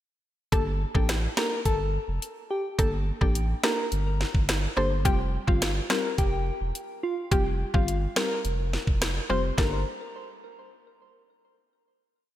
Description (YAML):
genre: dancehall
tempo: 106 BPM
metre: 4/4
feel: straight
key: G minor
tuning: A4 = 440 Hz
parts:
  - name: soft struck synth lead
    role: melody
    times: 0.5-9.8 s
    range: F4 to C5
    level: -31 LUFS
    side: left 1 dB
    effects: chorus, ping-pong delay
  - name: mallet-like synth pluck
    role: accompaniment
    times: 0.5-9.8 s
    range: G3 to A4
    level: -33 LUFS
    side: left 2 dB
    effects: chorus
  - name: warm sub bass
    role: bass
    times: 0.5-9.8 s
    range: E1 to A1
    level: -28 LUFS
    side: equal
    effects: none
  - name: afro-pop drum kit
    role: drums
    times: 0.5-9.7 s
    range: hi-hat, kick drum, rim click, snare drum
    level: -27 LUFS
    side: equal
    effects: gated reverb
room: light reverb, digital ambience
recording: bright 1980s-style digital production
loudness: -24 LUFS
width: side -13 dB against mid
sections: 0.5-9.6 verse; 9.6-11.8 final chord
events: none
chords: 0.5 Gmadd9; 5.1 Fsus2; 9.6 Gmadd9